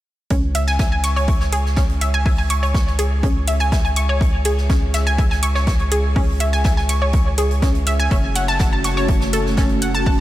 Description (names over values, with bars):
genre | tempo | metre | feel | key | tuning
melodic techno | 123 BPM | 4/4 | straight | C# minor | A4 = 440 Hz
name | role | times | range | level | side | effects
analog pluck | arpeggios | 0.3-10.2 s | C#4 to C#6 | -22 LUFS | equal | chorus, sidechain pumping, diffuse ambient delay
round analog bass | bass | 0.3-10.2 s | F#1 to C#2 | -20 LUFS | equal | sidechain pumping
big rock drum kit | drums | 0.3-10.2 s | hi-hat, snare drum | -34 LUFS | right 2 dB | high-pass filter on hats, high-pass filter on snare, high-pass filter on room
electronic kick drum | drums | 0.3-10.2 s | none | -18 LUFS | equal | none
electronic hi-hat | drums | 0.5-9.9 s | none | -24 LUFS | right 2 dB | sidechain pumping on hats
dark analog pad | sustained chords | 8.3-10.2 s | A3 to F#4 | -23 LUFS | right 1 dB | chorus, sidechain pumping
room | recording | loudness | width
light reverb, small room ambience | none | -16 LUFS | side -14 dB against mid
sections
0.3-10.2 A section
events
none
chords
0.3 C#5; 8.1 F#m